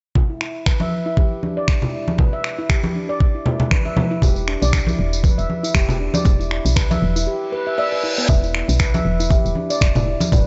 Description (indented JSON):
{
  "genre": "afro house",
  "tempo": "118 BPM",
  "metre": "4/4",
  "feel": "swing 56% on 16ths",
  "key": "E minor",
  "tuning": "A4 = 439 Hz",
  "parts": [
    { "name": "electronic kick drum", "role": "drums", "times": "0.2-10.4 s", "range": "none", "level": "-19 LUFS", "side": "equal", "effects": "none" },
    { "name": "congas", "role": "percussion", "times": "0.2-10.4 s", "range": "none", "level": "-25 LUFS", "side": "equal", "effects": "none" },
    { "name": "handpan", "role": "arpeggios", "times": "0.3-10.5 s", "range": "B3 to E5", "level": "-27 LUFS", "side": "equal", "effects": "sidechain pumping, low-pass filter, delay" },
    { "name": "afro-pop drum kit", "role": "drums", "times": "0.4-10.4 s", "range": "finger snaps, toms", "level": "-28 LUFS", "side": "equal", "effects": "none" },
    { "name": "woody FM bass", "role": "bass", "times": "4.2-10.5 s", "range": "E1 to B1", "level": "-24 LUFS", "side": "equal", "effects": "sidechain pumping" },
    { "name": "tambourine", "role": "percussion", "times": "4.2-10.4 s", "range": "none", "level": "-32 LUFS", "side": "equal", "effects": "none" },
    { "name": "reverse cymbal", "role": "sound effects", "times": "7.5-8.3 s", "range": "none", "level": "-28 LUFS", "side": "equal", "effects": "none" },
    { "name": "buzzing kalimba", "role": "melody", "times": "7.8-10.5 s", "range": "D5 to E5", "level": "-29 LUFS", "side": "equal", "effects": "delay" }
  ],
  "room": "studio reverb",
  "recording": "nothing above 7.8 kHz",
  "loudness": "-19 LUFS",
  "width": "mono",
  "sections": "0.2-8.3 A section; 8.3-10.5 B section",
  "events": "filter sweep on handpan 0.2-8.3; reverse cymbal 7.5-8.3",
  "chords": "0.2 E5; 8.3 E7(no3)"
}